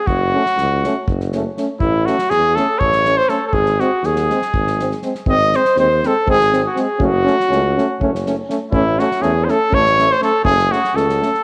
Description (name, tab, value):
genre	balkan folk, Balkan brass band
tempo	243 BPM (eighths)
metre	7/8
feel	straight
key	G# phrygian dominant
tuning	A4 = 440 Hz
part	warm cornet	melody	0.0-11.4 s	E4 to D#5	-19 LUFS	equal	slapback echo
part	dark clarinet	second line	0.0-11.4 s	E4 to D#5	-26 LUFS	equal	none
part	warm tuba	bass	0.1-11.2 s	F#1 to E2	-23 LUFS	equal	none
part	unplugged drum kit	percussion	0.1-11.4 s	kick drum, snare drum	-27 LUFS	equal	none
part	mellow French horn	accompaniment	0.3-11.3 s	B#3 to C#4	-26 LUFS	equal	none
part	warm trombone	accompaniment	0.3-11.3 s	G#3 to A3	-30 LUFS	equal	none
room	moderate echo chamber reverb, RT60 2.0 s, studio reverb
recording	none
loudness	-16 LUFS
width	mono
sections	0.0-5.3 A section; 5.3-11.4 A section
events	none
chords	0.1 F#m; 1.8 A; 3.5 G#; 7.0 F#m; 8.7 A; 10.4 F#m